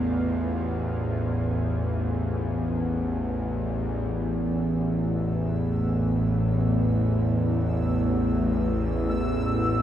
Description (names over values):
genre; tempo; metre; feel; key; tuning
dark ambient drone; free time; none; none; A harmonic minor; A4 = 440 Hz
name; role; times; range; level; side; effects
deep dark ambient pad; sustained chords; 0.0-9.8 s; A3 to Ab5; -35 LUFS; left 1 dB; chorus, built-in reverb
bowed-like drone; drone; 0.0-9.8 s; A1 to E2; -24 LUFS; equal; built-in reverb
bubbling stepped-filter texture; texture; 5.9-9.8 s; E6; -36 LUFS; left 1 dB; chorus, built-in reverb
room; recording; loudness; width
wet huge ambient reverb, RT60 8.3 s; none; -23 LUFS; side -11 dB against mid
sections
0.0-4.1 A section; 4.1-9.8 B section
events
none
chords
0.0 Fm; 4.1 Am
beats
free time